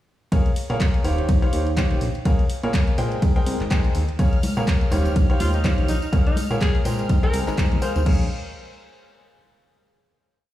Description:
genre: piano house.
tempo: 124 BPM.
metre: 4/4.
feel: swing 57% on 16ths.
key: Bb dorian.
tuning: A4 = 439 Hz.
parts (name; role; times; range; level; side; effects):
bright concert grand piano; riff; 0.3-8.2 s; Eb3 to Bb5; -27 LUFS; equal; sidechain pumping, digital delay.
fat analog bass; bass; 0.3-8.3 s; Eb1 to Bb2; -23 LUFS; equal; sidechain pumping.
electronic kick drum; drums; 0.3-8.2 s; none; -20 LUFS; equal; overdrive.
garage drum kit; drums; 0.3-8.2 s; crash cymbal, handclaps, hi-hat, ride cymbal; -34 LUFS; equal; none.
string machine, violins; sustained chords; 4.2-8.1 s; F6; -37 LUFS; equal; ensemble chorus, sidechain pumping.
tambourine and congas; percussion; 4.2-8.0 s; none; -31 LUFS; equal; none.
breathy alto saxophone; melody; 5.4-8.0 s; Eb4 to C5; -30 LUFS; equal; digital delay.
room: small room ambience.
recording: played on a big sound system in a bare room, large studio reverb.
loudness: -18 LUFS.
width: side -14 dB against mid.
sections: 0.3-8.1 drop; 8.1-10.0 final chord.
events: drop 0.3-8.1.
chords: 0.3 Bbm7; 1.0 Eb13; 2.3 Bbm7; 3.2 Abmaj9; 4.2 Bbm7; 4.9 Eb13; 6.1 Bbm7; 7.1 Abmaj9; 8.1 N.C..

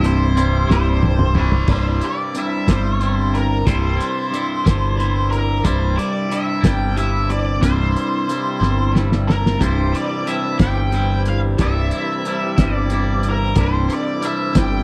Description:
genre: psychedelic rock.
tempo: 61 BPM (dotted quarters).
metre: 6/8.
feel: straight.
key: C major.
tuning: A4 = 440 Hz.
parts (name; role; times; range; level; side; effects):
octave-fuzz lead guitar; melody; 0.0-14.8 s; Bb4 to G5; -26 LUFS; equal; wah, distortion, slapback echo.
percussive tonewheel organ; sustained chords; 0.0-1.6, 9.6-14.8 s; E3 to C5; -32 LUFS; equal; none.
twangy electric guitar; riff; 0.0-14.8 s; C2 to E4; -24 LUFS; equal; phaser.
picked electric bass; bass; 0.0-14.8 s; C1 to G1; -21 LUFS; equal; none.
cloth-damped thuddy drum kit; drums; 0.0-14.7 s; crash cymbal, hi-hat, kick drum, snare drum, toms; -20 LUFS; equal; none.
room: studio reverb.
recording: dry, close 1970s-style studio recording.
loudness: -18 LUFS.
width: mono.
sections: 0.0-1.7 A section; 1.7-14.8 B section.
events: lead electric guitar solo 0.0-1.7; drum fill 0.7-1.7, 8.6-9.6.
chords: 0.0 C.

